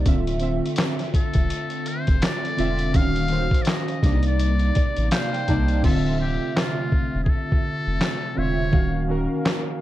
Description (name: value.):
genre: lo-fi hip hop.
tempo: 83 BPM.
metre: 4/4.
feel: swing 60% on 16ths.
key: unclear.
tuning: A4 = 440 Hz.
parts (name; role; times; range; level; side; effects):
warbly lo-fi synth keys; accompaniment; 0.0-9.8 s; C3 to A5; -26 LUFS; right 2 dB; chorus, cassette tape, low-pass filter.
hollow soft pad; sustained chords; 0.0-9.8 s; C3 to E5; -32 LUFS; left 1 dB; ensemble chorus, low-pass filter.
soft dub sub bass; bass; 0.0-9.3 s; D1 to C2; -24 LUFS; equal; none.
lo-fi sampler-style drum kit; drums; 0.1-9.7 s; crash cymbal, handclaps, hi-hat, kick drum, snare drum; -22 LUFS; equal; none.
trumpet with metal mute; melody; 1.2-9.1 s; F4 to F5; -30 LUFS; left 3 dB; low-pass filter, slapback echo.
room: light reverb.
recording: dark, warm production.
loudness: -20 LUFS.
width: side -14 dB against mid.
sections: 0.0-5.8 A section; 5.8-9.8 B section.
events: hi-hats muted 5.8-9.8.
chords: 0.1 Dm9; 2.9 Ebm9; 4.0 Cm9; 5.8 Dm9; 8.7 Ebm9.